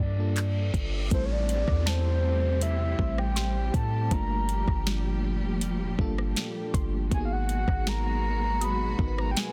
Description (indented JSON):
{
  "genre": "contemporary R&B",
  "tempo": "80 BPM",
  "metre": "4/4",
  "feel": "straight",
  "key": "unclear",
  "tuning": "A4 = 440 Hz",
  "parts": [
    { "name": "soft octave-layered synth lead", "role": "melody", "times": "0.0-9.5 s", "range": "C5 to B5", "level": "-35 LUFS", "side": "equal", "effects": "chorus, phaser, delay" },
    { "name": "FM electric piano with tremolo", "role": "accompaniment", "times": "0.0-9.5 s", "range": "G3 to C5", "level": "-37 LUFS", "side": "equal", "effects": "none" },
    { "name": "warm 808-style bass", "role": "bass", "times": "0.0-9.3 s", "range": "F1 to A2", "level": "-30 LUFS", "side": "equal", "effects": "none" },
    { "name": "reverse cymbal and downlifter", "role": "sound effects", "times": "0.0-7.1 s", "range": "none", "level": "-45 LUFS", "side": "equal", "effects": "none" },
    { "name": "smooth R&B drum kit", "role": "drums", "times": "0.4-9.5 s", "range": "handclaps, hi-hat, kick drum, rim click, snare drum", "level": "-31 LUFS", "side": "equal", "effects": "none" },
    { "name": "warm studio string section", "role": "sustained chords", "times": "1.1-9.5 s", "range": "Bb2 to G4", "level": "-39 LUFS", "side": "equal", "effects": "sidechain pumping" },
    { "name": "soft round pluck", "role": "texture", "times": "1.9-9.5 s", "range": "A5 to D#6", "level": "-48 LUFS", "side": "equal", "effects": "subtle chorus, delay" }
  ],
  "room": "little or no reverb",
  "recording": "dense, heavily limited modern master",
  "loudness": "-27 LUFS",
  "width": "mono",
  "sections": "0.0-1.1 A section; 1.1-9.5 B section",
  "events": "reverse cymbal 0.0-1.1",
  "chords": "0.0 Gm7; 1.1 Am7; 4.1 Gm9; 7.1 G#m9"
}